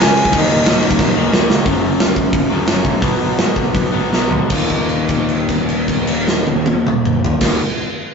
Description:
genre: punk rock.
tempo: 153-180 BPM.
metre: 4/4.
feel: straight.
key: Eb minor.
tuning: A4 = 440 Hz.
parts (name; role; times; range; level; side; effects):
bluesy overdriven lead guitar; melody; 0.0-0.8 s; Eb5 to Ab5; -17 LUFS; equal; distortion.
crunchy overdriven guitar; riff; 0.0-7.6 s; Eb2 to Db4; -20 LUFS; left 4 dB; none.
overdriven electric guitar; riff; 0.0-7.6 s; Eb2 to Db4; -22 LUFS; right 4 dB; none.
fuzz picked electric bass; bass; 0.0-7.6 s; Eb1 to Ab2; -24 LUFS; equal; overdrive.
big rock drum kit; drums; 0.0-7.5 s; crash cymbal, hi-hat, kick drum, snare drum, toms; -16 LUFS; right 1 dB; none.
room: light reverb.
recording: rough rehearsal-room recording, nothing above 7.7 kHz.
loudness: -13 LUFS.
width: side -5 dB against mid.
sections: 0.0-1.7 A section; 1.7-4.5 B section; 4.5-7.7 C section.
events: drum fill 1.0-1.7, 4.1-4.5; slowing down 1.7-4.5; held note 4.5-7.4.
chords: 0.3 Eb5; 1.7 Gb5; 3.0 B5; 4.5 Eb5.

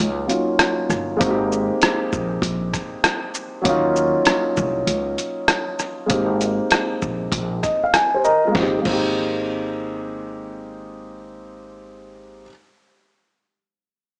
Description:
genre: hip hop, jazz-hop.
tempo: 98 BPM.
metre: 4/4.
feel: swing 66% on 16ths.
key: Ab major.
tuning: A4 = 441 Hz.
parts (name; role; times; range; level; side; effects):
dark grand piano; accompaniment; 0.0-12.5 s; Gb3 to Bb5; -24 LUFS; equal; none.
upright bass; bass; 0.0-12.5 s; G1 to Eb2; -28 LUFS; equal; none.
trip hop sampler-style drum kit; drums; 0.3-9.1 s; crash cymbal, hi-hat, kick drum, rim click, shaker, snare drum; -23 LUFS; equal; none.
room: moderate plate reverb, RT60 1.6 s, small room ambience.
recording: small speaker sound.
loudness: -21 LUFS.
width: mono.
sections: 0.0-8.6 A section; 8.6-11.0 B section.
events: grand piano fill 7.3-8.6.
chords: 0.0 Ebm9; 1.2 Abmaj9; 3.7 Ebm9; 6.1 Abmaj9.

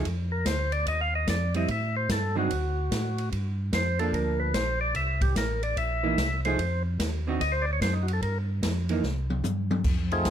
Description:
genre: soul jazz organ trio.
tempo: 147 BPM.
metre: 4/4.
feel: swing 65% on 8ths.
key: F mixolydian.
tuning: A4 = 440 Hz.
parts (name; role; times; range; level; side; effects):
vintage hollow-body jazz guitar; accompaniment; 0.0-9.0 s; D3 to Ab4; -30 LUFS; right 5 dB; none.
mellow tonewheel organ; bass; 0.0-10.3 s; A1 to A2; -28 LUFS; equal; chorus vibrato, slow rotary speaker.
open jazz drum kit; drums; 0.0-10.3 s; crash cymbal, hi-hat, kick drum, ride cymbal, snare drum, toms; -31 LUFS; equal; none.
percussive tonewheel organ; melody; 0.3-10.3 s; A3 to F5; -29 LUFS; left 1 dB; slow rotary speaker, plate reverb.
room: light reverb.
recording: none.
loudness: -25 LUFS.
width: side -9 dB against mid.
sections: 0.0-9.8 A section.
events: tonewheel organ solo 0.0-9.8; drum fill 9.0-9.8.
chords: 0.1 F5; 1.7 Am7; 2.5 D; 3.3 Gm7; 5.0 C7#9; 6.6 F5; 7.4 D; 8.2 Gm7; 9.0 C5.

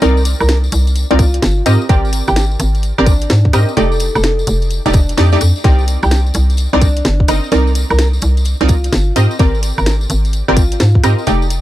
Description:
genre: UK garage, two-step garage.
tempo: 128 BPM.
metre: 4/4.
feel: swing 65% on 16ths.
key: unclear.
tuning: A4 = 440 Hz.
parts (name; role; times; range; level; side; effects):
nylon-string guitar; melody; 0.0-11.5 s; D4 to Bb4; -22 LUFS; equal; tape echo.
punchy chord stab; stabs; 0.0-11.6 s; A3 to Eb5; -18 LUFS; right 1 dB; chorus, digital delay.
hollow knocking FM bass; bass; 0.0-11.6 s; F1 to Ab2; -13 LUFS; equal; none.
garage drum kit; drums; 0.0-11.6 s; hi-hat, rim click, snare drum, woodblock; -19 LUFS; equal; none.
tambourine; percussion; 0.0-11.6 s; none; -28 LUFS; left 3 dB; none.
electronic kick drum; drums; 1.2-11.0 s; none; -11 LUFS; equal; none.
room: little or no reverb.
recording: dark, warm production.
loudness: -11 LUFS.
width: side -14 dB against mid.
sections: 0.0-11.6 A section.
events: none.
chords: 0.0 Cm9; 1.7 Abmaj9#11; 3.8 F13; 5.6 Cm9; 9.2 Abmaj9#11.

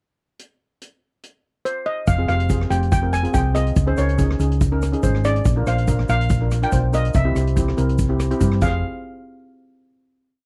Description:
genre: calypso.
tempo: 142 BPM.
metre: 4/4.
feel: straight.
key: F minor.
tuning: A4 = 440 Hz.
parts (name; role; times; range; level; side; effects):
street-band drum kit; drums; 0.4-8.7 s; crash cymbal, hi-hat, kick drum, rim click; -25 LUFS; equal; none.
steel pan; melody; 1.7-8.8 s; C5 to Ab5; -27 LUFS; equal; none.
hollow-body short-scale fingered electric bass; bass; 2.1-8.8 s; F1 to G2; -22 LUFS; equal; none.
egg shaker; percussion; 2.1-8.8 s; none; -43 LUFS; equal; none.
steel pan; accompaniment; 2.2-8.8 s; C4 to C5; -28 LUFS; equal; none.
room: little or no reverb.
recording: dry, close 1970s-style studio recording.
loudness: -20 LUFS.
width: mono.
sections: 0.4-2.1 pickup bar; 2.1-8.8 verse; 8.8-10.4 final hit.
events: none.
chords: 0.4 N.C.; 2.1 Fmadd9; 3.8 Dbsus2; 5.5 Bb; 7.1 C; 8.6 Fm; 8.8 N.C..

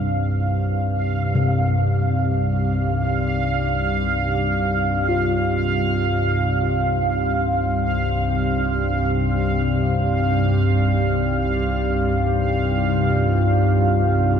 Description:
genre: dark ambient drone.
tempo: free time.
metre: none.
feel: none.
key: C minor.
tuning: A4 = 441 Hz.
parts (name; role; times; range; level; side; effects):
dark analog pad; sustained chords; 0.0-14.4 s; C4 to F5; -26 LUFS; right 1 dB; chorus.
organ-like drone; drone; 0.0-14.4 s; C2 to G2; -20 LUFS; equal; ensemble chorus, built-in reverb.
bubbling stepped-filter texture; texture; 0.0-14.4 s; F5; -24 LUFS; right 2 dB; chorus, built-in reverb.
gamelan-type bossed gongs; arpeggios; 1.4-11.2 s; C3 to F4; -27 LUFS; left 3 dB; tape echo.
room: moderate lush hall reverb, RT60 2.8 s.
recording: dreamy mix soaked in reverb.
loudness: -18 LUFS.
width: side -7 dB against mid.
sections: 0.0-14.4 A section.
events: fade-in on analog synth pad 0.0-14.4; filter sweep on synth drone 0.0-14.4.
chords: 0.0 Cmadd9.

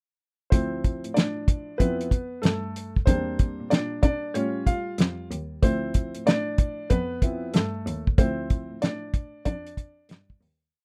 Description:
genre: hip hop, jazz-hop.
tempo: 94 BPM.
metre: 4/4.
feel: swing 65% on 16ths.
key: D dorian.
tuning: A4 = 441 Hz.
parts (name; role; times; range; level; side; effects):
warm upright piano; accompaniment; 0.5-10.4 s; F3 to E#5; -31 LUFS; equal; none.
muted cello; bass; 0.5-10.7 s; D2 to Bb2; -35 LUFS; equal; none.
cloth-damped thuddy drum kit; drums; 0.5-10.6 s; hi-hat, kick drum, snare drum; -24 LUFS; equal; none.
room: little or no reverb.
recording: rough home demo mix.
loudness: -26 LUFS.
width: mono.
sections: 0.5-10.7 A section.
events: upright piano solo 0.5-10.7; fade-out 8.2-10.7.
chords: 0.5 Dm9; 3.1 Em7b5; 4.4 Aaug7; 5.6 Dm9.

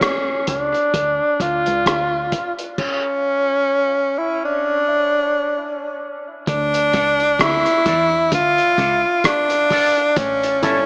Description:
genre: dub reggae.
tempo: 65 BPM.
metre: 4/4.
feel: swing 56% on 16ths.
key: D harmonic minor.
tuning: A4 = 439 Hz.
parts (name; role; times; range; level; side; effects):
clear tenor saxophone; melody; 0.0-10.9 s; C#4 to F4; -19 LUFS; equal; low-pass filter, dub echo.
deep dub fingered electric bass; bass; 0.0-10.9 s; G1 to E2; -32 LUFS; equal; none.
cloth-damped thuddy drum kit; drums; 0.0-10.9 s; crash cymbal, hi-hat, kick drum, rim click; -24 LUFS; equal; none.
clean electric guitar; riff; 6.5-10.9 s; G2 to E3; -34 LUFS; equal; none.
electric guitar with an envelope filter; accompaniment; 6.9-10.8 s; C#4 to D5; -29 LUFS; equal; spring reverb, high-pass filter, low-pass filter, dub echo.
barky reed electric piano; stabs; 6.9-10.9 s; E4 to D5; -31 LUFS; equal; none.
room: moderate echo chamber reverb, RT60 2.6 s.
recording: small speaker sound.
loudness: -18 LUFS.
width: mono.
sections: 0.0-6.5 A section; 6.5-10.9 B section.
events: break 0.0-6.5.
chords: 0.0 Dm; 2.8 N.C.; 6.5 Dm; 10.2 A.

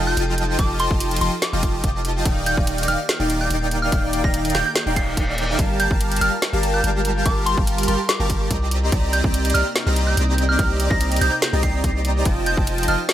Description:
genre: future bass.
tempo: 144 BPM.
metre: 4/4.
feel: half-time.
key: G minor.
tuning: A4 = 440 Hz.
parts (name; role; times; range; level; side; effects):
airy breathy pad; sustained chords; 0.0-13.1 s; C3 to A5; -32 LUFS; equal; chorus, sidechain pumping.
supersaw chords; riff; 0.0-13.0 s; Eb3 to Bb5; -23 LUFS; equal; wide subtle chorus, sidechain pumping.
long sustained 808-style bass; bass; 0.0-13.0 s; Eb1 to C2; -23 LUFS; equal; sidechain pumping.
soft synth bell; melody; 0.1-13.0 s; C6 to C7; -25 LUFS; right 1 dB; chorus, phaser, sidechain pumping, digital delay.
trap drum kit; drums; 0.2-13.1 s; hi-hat, snare drum; -24 LUFS; equal; none.
electronic kick drum; drums; 0.6-12.7 s; none; -22 LUFS; equal; none.
reverse cymbal; sound effects; 5.0-5.6 s; none; -29 LUFS; left 1 dB; none.
room: light reverb, digital ambience.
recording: none.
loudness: -18 LUFS.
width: side -12 dB against mid.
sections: 0.0-13.1 A section.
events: reverse cymbal 5.0-5.6.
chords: 0.0 F9; 2.3 Ebmaj7; 5.6 Gm9; 8.7 Cm9; 12.3 F9.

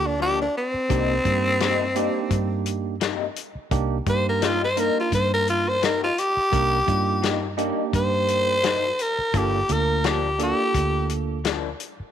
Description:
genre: straight-eighth soul blues.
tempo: 85 BPM.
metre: 4/4.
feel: swing 55% on 16ths.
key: unclear.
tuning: A4 = 436 Hz.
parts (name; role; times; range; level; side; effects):
growling tenor saxophone; melody; 0.0-11.1 s; C4 to C5; -22 LUFS; left 1 dB; none.
bell-like tine electric piano; accompaniment; 0.0-11.4 s; Bb3 to Bb4; -28 LUFS; right 14 dB; medium stereo tremolo.
vintage muted fingered electric bass; bass; 0.0-12.0 s; G1 to G2; -27 LUFS; equal; none.
electric guitar through a small old amp; stabs; 0.2-11.7 s; G2 to Eb4; -30 LUFS; left 12 dB; analog chorus.
warm soul drum kit; drums; 0.9-12.0 s; hi-hat, kick drum, snare drum; -28 LUFS; left 5 dB; none.
room: light reverb, studio reverb.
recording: 1960s-style stereo with parts hard left and right.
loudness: -20 LUFS.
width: side -9 dB against mid.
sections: 0.0-12.1 A section.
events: none.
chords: 0.0 Gm7; 0.9 Cm7; 9.3 Gm7.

